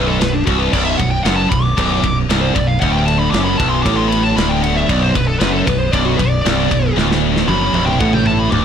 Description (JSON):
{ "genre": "heavy metal", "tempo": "116 BPM", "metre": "4/4", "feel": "straight", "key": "B phrygian", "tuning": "A4 = 440 Hz", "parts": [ { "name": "high-gain lead guitar", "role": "melody", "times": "0.0-8.6 s", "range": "D4 to D6", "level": "-20 LUFS", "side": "equal", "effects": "distortion" }, { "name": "heavy high-gain guitar", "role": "riff", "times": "0.0-8.6 s", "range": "B1 to A2", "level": "-20 LUFS", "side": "left 12 dB", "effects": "distortion" }, { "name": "heavy high-gain guitar", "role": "riff", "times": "0.0-8.6 s", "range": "B1 to A2", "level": "-20 LUFS", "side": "right 9 dB", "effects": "distortion" }, { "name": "modern bright fingered electric bass", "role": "bass", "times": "0.0-8.6 s", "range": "B0 to A1", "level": "-21 LUFS", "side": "equal", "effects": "none" }, { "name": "tight metal drum kit", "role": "drums", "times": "0.2-8.6 s", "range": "crash cymbal, kick drum, ride cymbal, snare drum, toms", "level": "-20 LUFS", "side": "equal", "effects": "soft clipping on kick" }, { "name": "clear symphonic string section", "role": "sustained chords", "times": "0.7-8.6 s", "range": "D3 to B3", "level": "-29 LUFS", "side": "equal", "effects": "none" }, { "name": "cranked stack guitar", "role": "riff", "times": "0.7-8.6 s", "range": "B1 to A2", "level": "-22 LUFS", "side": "left 1 dB", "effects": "overdrive" } ], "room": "little or no reverb", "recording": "blown-out, overdriven recording, overdrive", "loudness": "-13 LUFS", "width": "side -8 dB against mid", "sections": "0.0-8.6 A section", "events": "lead electric guitar solo 0.0-8.6; drum fill 7.0-8.6", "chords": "0.0 Bm" }